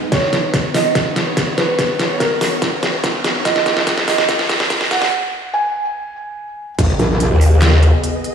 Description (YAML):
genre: heavy wobble dubstep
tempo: 144 BPM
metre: 4/4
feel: half-time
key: unclear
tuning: A4 = 440 Hz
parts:
  - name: felt-muted upright piano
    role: melody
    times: 0.0-6.7 s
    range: A#4 to G#5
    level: -20 LUFS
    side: right 2 dB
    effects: digital delay
  - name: supersaw chords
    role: sustained chords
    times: 0.0-8.3 s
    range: B3 to D#5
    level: -24 LUFS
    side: equal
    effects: phaser, sidechain pumping, low-pass filter
  - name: dubstep drum kit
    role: drums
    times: 0.1-8.3 s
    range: crash cymbal, handclaps, hi-hat, snare drum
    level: -18 LUFS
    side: equal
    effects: none
  - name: electronic kick drum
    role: drums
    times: 0.1-6.9 s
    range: none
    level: -23 LUFS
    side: equal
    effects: none
  - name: riser and impact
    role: sound effects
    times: 1.3-8.3 s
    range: none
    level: -23 LUFS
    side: equal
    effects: none
  - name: growl bass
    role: bass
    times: 6.8-7.9 s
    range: G#1 to D#2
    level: -11 LUFS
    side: equal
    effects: chorus, overdrive
  - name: metallic wobble bass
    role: bass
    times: 7.0-7.3 s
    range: A#1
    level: -15 LUFS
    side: equal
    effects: distortion, chorus, overdrive
room: moderate lush hall reverb, RT60 1.6 s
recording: played on a big sound system in a bare room, stone room reverb, high-pass filter, small room ambience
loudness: -14 LUFS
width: side -7 dB against mid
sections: 0.0-6.8 A section; 6.8-8.3 B section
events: build-up 0.0-6.8; drum fill 0.0-5.1; riser 1.3-5.1; break 5.1-6.8; drop 6.8-8.3; impact 6.8-8.3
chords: 0.1 Badd9; 6.8 G#m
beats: | 0.12 0.54 0.95 1.37 | 1.79 2.20 2.62 3.04 | 3.45 3.87 4.29 4.70 | 5.12 5.54 5.95 6.37 | 6.79 7.20 7.62 8.04